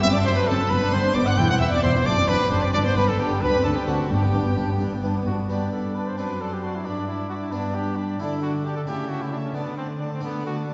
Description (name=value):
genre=classical, baroque-style concerto movement with solo episodes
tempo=89 BPM (dotted quarters)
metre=6/8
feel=straight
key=G major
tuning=A4 = 442 Hz
part: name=bright trumpet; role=melody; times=0.0-10.6 s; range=B3 to G5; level=-30 LUFS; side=equal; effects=none
part: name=rich chamber violin section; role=melody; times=0.0-10.7 s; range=F#5 to G6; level=-35 LUFS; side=equal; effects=none
part: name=warm chamber violin section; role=second line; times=0.0-10.7 s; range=F#4 to G5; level=-33 LUFS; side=equal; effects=none
part: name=dark chamber viola section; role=accompaniment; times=0.0-10.7 s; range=A3 to E4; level=-32 LUFS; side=equal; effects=none
part: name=harpsichord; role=accompaniment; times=0.0-10.7 s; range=D2 to G4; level=-34 LUFS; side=equal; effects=none
part: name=dark chamber cello section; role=bass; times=0.0-10.7 s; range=D2 to D3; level=-29 LUFS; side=equal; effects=none
part: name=rich chamber double bass section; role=bass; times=0.0-5.3 s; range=E1 to D2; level=-29 LUFS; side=equal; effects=none
room=wet concert hall reverb, RT60 2.1 s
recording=heard from further back in the room, nothing above 7.7 kHz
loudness=-23 LUFS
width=mono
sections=0.0-5.5 A section; 5.5-10.7 B section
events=none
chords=0.0 D7/F#; 0.7 G; 1.4 C/E; 2.0 D7/F#; 2.7 G; 3.4 D7; 4.1 G; 6.2 D7/F#; 6.9 G; 8.2 D5; 8.9 A/C#; 9.5 D5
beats=| 0.02 0.70 | 1.37 2.05 | 2.73 3.41 | 4.10 4.79 | 5.49 6.17 | 6.85 7.53 | 8.20 8.87 | 9.55 10.22